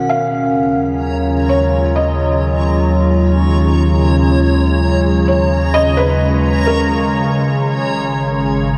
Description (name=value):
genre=ambient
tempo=64 BPM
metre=4/4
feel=straight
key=unclear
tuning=A4 = 436 Hz
part: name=felt-muted upright piano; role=melody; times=0.0-7.3 s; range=Bb4 to Gb5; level=-22 LUFS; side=equal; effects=delay
part: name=warbly tape-like pad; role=sustained chords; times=0.0-8.8 s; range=Cb3 to Bb4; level=-19 LUFS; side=equal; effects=chorus, built-in reverb
part: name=round analog bass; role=bass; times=0.0-8.8 s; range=Ab1 to Eb2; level=-19 LUFS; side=equal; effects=none
part: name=backwards swelling texture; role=texture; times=0.0-8.8 s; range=Cb4 to Cb7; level=-26 LUFS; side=equal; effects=built-in reverb
part: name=organ-like drone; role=drone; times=1.6-8.8 s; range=Db3 to Ab3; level=-24 LUFS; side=equal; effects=ensemble chorus, built-in reverb
room=wet huge ambient reverb, RT60 7.0 s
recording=worn, warbling old tape, cassette tape, warbly pitch drift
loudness=-14 LUFS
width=mono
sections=0.0-8.8 A section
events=none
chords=0.1 Ebm9; 7.6 Absus2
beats=| 0.11 1.05 1.98 2.92 | 3.86 4.80 5.73 6.67 | 7.61 8.55